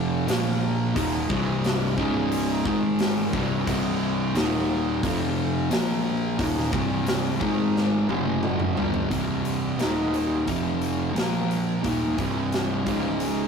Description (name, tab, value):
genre	stoner and doom metal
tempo	88 BPM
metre	4/4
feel	straight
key	C phrygian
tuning	A4 = 440 Hz
part	fuzz guitar	riff	0.0-13.5 s	C2 to Bb3	-23 LUFS	equal	distortion
part	fuzz fingered electric bass	bass	0.0-13.5 s	C1 to Bb1	-35 LUFS	equal	overdrive
part	big rock drum kit	drums	0.3-13.4 s	hi-hat, kick drum, snare drum, toms	-29 LUFS	equal	none
room	light reverb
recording	rough rehearsal-room recording, warm saturation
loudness	-22 LUFS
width	side -6 dB against mid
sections	0.0-9.1 A section; 9.1-13.5 B section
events	drum fill 7.7-9.1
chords	0.3 Bb5; 1.0 Cm; 2.0 Db5; 2.7 Ab5; 3.3 C5; 4.3 Eb5; 5.0 F5; 5.7 Bb5; 6.4 Cm; 7.4 Ab5; 8.1 F#5; 8.8 G5; 9.1 C5; 9.8 Eb5; 10.5 F5; 11.2 Bb5; 11.8 Cm; 12.9 Db5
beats	0.28 | 0.96 1.63 2.31 2.99 | 3.67 4.35 5.03 5.71 | 6.39 7.07 7.75 8.43 | 9.11 9.79 10.47 11.16 | 11.84 12.52 13.20